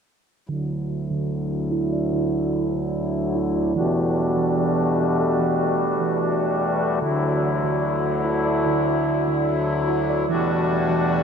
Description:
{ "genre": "hip hop", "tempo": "147 BPM", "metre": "4/4", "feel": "half-time", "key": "D major", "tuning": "A4 = 441 Hz", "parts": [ { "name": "hand-pumped harmonium", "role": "sustained chords", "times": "0.5-11.2 s", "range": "D2 to F#4", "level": "-21 LUFS", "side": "left 2 dB", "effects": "low-pass filter" }, { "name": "muted felt-like synth keys", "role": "arpeggios", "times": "0.5-11.2 s", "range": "D3 to D5", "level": "-25 LUFS", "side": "right 5 dB", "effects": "chorus, low-pass filter, diffuse ambient delay" } ], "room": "wet huge ambient reverb, RT60 7.8 s", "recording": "dreamy mix soaked in reverb", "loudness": "-20 LUFS", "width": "side -6 dB against mid", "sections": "0.5-11.2 A section", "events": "filter sweep 0.5-11.2", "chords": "0.5 Dadd9; 3.8 Em11; 7.0 Dadd9; 10.3 Em11" }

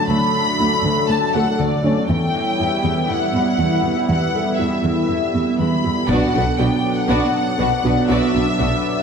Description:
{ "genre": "cinematic, hybrid orchestral and electronic film score", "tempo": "120 BPM", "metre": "4/4", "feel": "straight", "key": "E dorian", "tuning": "A4 = 441 Hz", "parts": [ { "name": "warm symphonic violin section", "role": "melody", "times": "0.0-9.0 s", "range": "D5 to B5", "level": "-22 LUFS", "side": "left 2 dB", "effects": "none" }, { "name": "chorused pulse-width pad", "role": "sustained chords", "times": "0.0-9.0 s", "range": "F#3 to E5", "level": "-21 LUFS", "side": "equal", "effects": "none" }, { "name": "felt-muted upright piano", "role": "texture", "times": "0.0-9.0 s", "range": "C#4 to C#5", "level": "-31 LUFS", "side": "left 4 dB", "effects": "ping-pong delay" }, { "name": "soft round pluck", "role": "arpeggios", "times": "0.1-8.7 s", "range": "D3 to B4", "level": "-25 LUFS", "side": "left 1 dB", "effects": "chorus, ping-pong delay" }, { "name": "warm symphonic cello section", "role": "bass", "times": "0.1-8.7 s", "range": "D2 to B2", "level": "-24 LUFS", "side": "right 3 dB", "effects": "none" }, { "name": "warm symphonic violin section", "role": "second line", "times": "6.1-8.7 s", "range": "B3 to D5", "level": "-26 LUFS", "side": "left 3 dB", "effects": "none" }, { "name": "warm symphonic viola section", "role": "accompaniment", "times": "6.1-8.7 s", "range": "B3 to D4", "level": "-24 LUFS", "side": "right 1 dB", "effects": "none" }, { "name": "rich symphonic double bass section", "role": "bass", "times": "6.1-8.7 s", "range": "B1", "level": "-24 LUFS", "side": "right 3 dB", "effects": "none" }, { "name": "taiko ensemble", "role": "drums", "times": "6.1-7.1 s", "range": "none", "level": "-26 LUFS", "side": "equal", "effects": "none" } ], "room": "wet recital hall reverb, RT60 1.5 s", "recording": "none", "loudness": "-16 LUFS", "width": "side -6 dB against mid", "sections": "0.0-6.1 A section; 6.1-9.0 B section", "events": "none", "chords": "0.0 D; 2.1 Em; 6.1 Bm" }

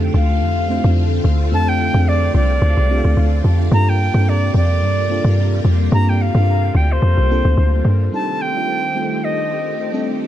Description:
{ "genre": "amapiano", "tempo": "109 BPM", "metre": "4/4", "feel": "swing 55% on 16ths", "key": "C dorian", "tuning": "A4 = 436 Hz", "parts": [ { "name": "FM electric piano with soft pad layer", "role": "accompaniment", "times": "0.0-10.3 s", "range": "G3 to A5", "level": "-24 LUFS", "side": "equal", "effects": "chorus, dub echo" }, { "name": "string machine, violins", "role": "sustained chords", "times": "0.0-10.3 s", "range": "C3 to G4", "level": "-25 LUFS", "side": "left 1 dB", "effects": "phaser, ensemble chorus" }, { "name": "deep log drum bass", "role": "bass", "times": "0.0-8.1 s", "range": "C2 to G2", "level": "-15 LUFS", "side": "equal", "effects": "none" }, { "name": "silver concert flute", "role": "melody", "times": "0.2-10.1 s", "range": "C5 to Bb5", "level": "-22 LUFS", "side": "equal", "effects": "dub echo" } ], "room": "little or no reverb", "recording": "echo-heavy mix", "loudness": "-14 LUFS", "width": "side -12 dB against mid", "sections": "0.0-8.1 A section; 8.1-10.3 B section", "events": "drop 0.0-8.1; FM electric piano fill 2.9-3.7", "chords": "0.0 Dm7; 3.7 Gm11; 8.1 Cm69" }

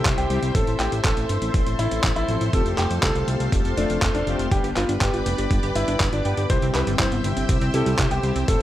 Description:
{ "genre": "italo disco", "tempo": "121 BPM", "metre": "4/4", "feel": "straight", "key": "unclear", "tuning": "A4 = 441 Hz", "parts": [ { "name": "clear grand piano", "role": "melody", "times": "0.0-8.6 s", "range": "D4 to C5", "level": "-28 LUFS", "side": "left 1 dB", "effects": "digital delay" }, { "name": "string machine, full ensemble", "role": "sustained chords", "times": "0.0-8.6 s", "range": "A4 to E6", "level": "-30 LUFS", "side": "right 1 dB", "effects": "ensemble chorus" }, { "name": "analog synth brass", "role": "stabs", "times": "0.0-8.6 s", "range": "G2 to C5", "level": "-28 LUFS", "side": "left 4 dB", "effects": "chorus" }, { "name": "fat analog bass", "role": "bass", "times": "0.1-8.6 s", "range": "F1 to F2", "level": "-25 LUFS", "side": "equal", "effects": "none" }, { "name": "dusty soul sampler-style drum kit", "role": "drums", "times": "0.1-8.6 s", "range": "handclaps, hi-hat", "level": "-28 LUFS", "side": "equal", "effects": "overdrive" }, { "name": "electronic kick drum", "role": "drums", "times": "0.1-8.6 s", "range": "none", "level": "-23 LUFS", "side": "equal", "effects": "overdrive" }, { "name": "analog pluck", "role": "arpeggios", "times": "4.5-8.6 s", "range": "G3 to G5", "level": "-31 LUFS", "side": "right 4 dB", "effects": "chorus, tape echo" } ], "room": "digital ambience", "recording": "none", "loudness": "-19 LUFS", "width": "side -13 dB against mid", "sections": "0.0-8.6 A section", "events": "none", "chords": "0.0 C; 0.6 Am; 2.5 F; 4.5 G; 6.5 C" }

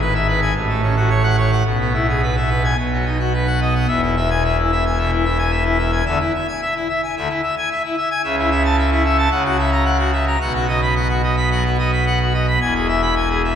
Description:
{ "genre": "classical, organ toccata", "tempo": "110 BPM", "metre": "4/4", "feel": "straight", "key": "E major", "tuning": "A4 = 439 Hz", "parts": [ { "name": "pipe organ, full organ", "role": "solo", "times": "0.0-13.6 s", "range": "E1 to B5", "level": "-16 LUFS", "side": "equal", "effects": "none" } ], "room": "wet church reverb, RT60 3.2 s", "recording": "minimal, uncompressed stereo recording", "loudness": "-16 LUFS", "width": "side -8 dB against mid", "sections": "0.0-3.9 A section; 3.9-13.6 B section", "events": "none", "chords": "0.0 E/G#; 0.6 F#m/A; 1.7 E/B; 2.8 B; 3.9 E; 6.1 E7/D; 8.2 A/C#; 9.3 F#7/C#; 10.4 B; 12.6 E" }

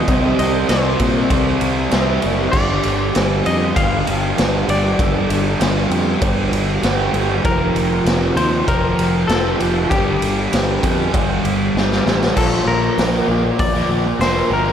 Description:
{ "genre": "rock, shoegaze and dream pop", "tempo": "98 BPM", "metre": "4/4", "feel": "straight", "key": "G minor", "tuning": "A4 = 440 Hz", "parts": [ { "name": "semi-hollow electric guitar", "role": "melody", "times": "0.0-14.7 s", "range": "G4 to F5", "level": "-23 LUFS", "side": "left 2 dB", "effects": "analog delay" }, { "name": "fuzz guitar", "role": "riff", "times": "0.0-14.7 s", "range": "F2 to C4", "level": "-18 LUFS", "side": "right 1 dB", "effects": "distortion, lush chorus" }, { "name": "growling fingered electric bass", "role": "bass", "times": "0.0-14.7 s", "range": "F1 to Bb2", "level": "-22 LUFS", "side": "equal", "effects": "overdrive" }, { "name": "raw garage drum kit", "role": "drums", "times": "0.1-14.4 s", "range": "crash cymbal, hi-hat, kick drum, ride cymbal, snare drum", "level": "-20 LUFS", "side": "equal", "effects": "none" } ], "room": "wet lush hall reverb, RT60 2.8 s", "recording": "dreamy mix soaked in reverb", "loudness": "-14 LUFS", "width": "side -8 dB against mid", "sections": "0.0-12.4 A section; 12.4-14.7 B section", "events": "drum fill 11.8-12.4", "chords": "0.1 C5; 2.5 G5; 7.5 Fsus4; 9.9 G5; 12.4 Bb" }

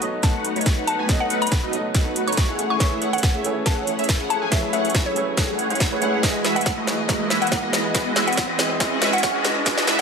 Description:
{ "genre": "future bass", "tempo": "140 BPM", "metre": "4/4", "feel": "swing 54% on 16ths, half-time", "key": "A lydian", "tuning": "A4 = 440 Hz", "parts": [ { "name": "dark concert grand piano", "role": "accompaniment", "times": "0.0-10.0 s", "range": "G#3 to F#5", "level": "-29 LUFS", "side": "right 3 dB", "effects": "sidechain pumping, dub echo" }, { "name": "dark symphonic string section", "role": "sustained chords", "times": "0.0-10.0 s", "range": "E3 to D#5", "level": "-34 LUFS", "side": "left 1 dB", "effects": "sidechain pumping" }, { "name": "big bright polysynth", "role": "riff", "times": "0.0-10.0 s", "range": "G#3 to G#5", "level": "-24 LUFS", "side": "equal", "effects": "phaser, analog chorus, sidechain pumping" }, { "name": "saturated sub bass", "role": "bass", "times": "0.0-10.0 s", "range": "G#1 to A2", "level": "-46 LUFS", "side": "equal", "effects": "none" }, { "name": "trap drum kit", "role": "drums", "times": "0.0-10.0 s", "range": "hi-hat, snare drum", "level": "-24 LUFS", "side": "equal", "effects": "overdrive, high-pass filter on snare, high-pass filter on hats, high-pass filter on room" }, { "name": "riser", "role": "sound effects", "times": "0.9-10.0 s", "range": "none", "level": "-30 LUFS", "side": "equal", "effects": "none" }, { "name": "mallet-like synth pluck", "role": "melody", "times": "0.2-10.0 s", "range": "C#5 to C#6", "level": "-26 LUFS", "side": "left 2 dB", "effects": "chorus, phaser, sidechain pumping, ping-pong delay" }, { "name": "electronic kick drum", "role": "drums", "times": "0.2-9.8 s", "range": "none", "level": "-22 LUFS", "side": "equal", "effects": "overdrive" } ], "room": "moderate digital room reverb, RT60 0.9 s", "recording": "high-pass filter, lossy compression artefacts", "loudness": "-18 LUFS", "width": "side -5 dB against mid", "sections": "0.0-10.0 A section", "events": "build-up 0.0-10.0; drum fill 0.0-10.0; filter sweep on analog polysynth 0.0-10.0; filter sweep 0.0-10.0; riser 0.9-10.0", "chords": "0.0 B7; 2.6 Amaj7; 6.2 Emaj9/G#; 9.4 Amaj7" }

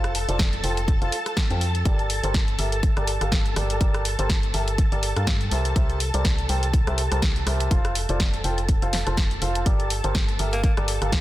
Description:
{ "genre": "piano house", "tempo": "123 BPM", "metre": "4/4", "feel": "swing 56% on 16ths", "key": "G dorian", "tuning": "A4 = 440 Hz", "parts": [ { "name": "analog string pad", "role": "sustained chords", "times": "0.0-11.2 s", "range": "A4 to A5", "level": "-31 LUFS", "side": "equal", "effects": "ensemble chorus, sidechain pumping" }, { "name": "bright concert grand piano", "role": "riff", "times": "0.0-11.1 s", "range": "F4 to A5", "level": "-30 LUFS", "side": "equal", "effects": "sidechain pumping, low-pass filter" }, { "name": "organ-like FM bass", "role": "bass", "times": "0.0-11.2 s", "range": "F1 to G2", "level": "-26 LUFS", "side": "equal", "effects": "sidechain pumping" }, { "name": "house drum kit", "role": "drums", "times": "0.0-11.2 s", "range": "hi-hat, rim click, snare drum", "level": "-29 LUFS", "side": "equal", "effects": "none" }, { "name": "electronic kick drum", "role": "drums", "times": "0.4-11.2 s", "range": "none", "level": "-22 LUFS", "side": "equal", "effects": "none" }, { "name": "raspy tenor saxophone", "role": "melody", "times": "10.5-10.7 s", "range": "Bb3", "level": "-32 LUFS", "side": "equal", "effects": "tape echo" } ], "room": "light reverb, digital ambience", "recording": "dense, heavily limited modern master", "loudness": "-20 LUFS", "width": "side -15 dB against mid", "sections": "0.0-11.2 A section", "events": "none", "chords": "0.0 F; 1.9 Gmadd9; 5.5 C7; 7.7 F; 9.7 Gmadd9" }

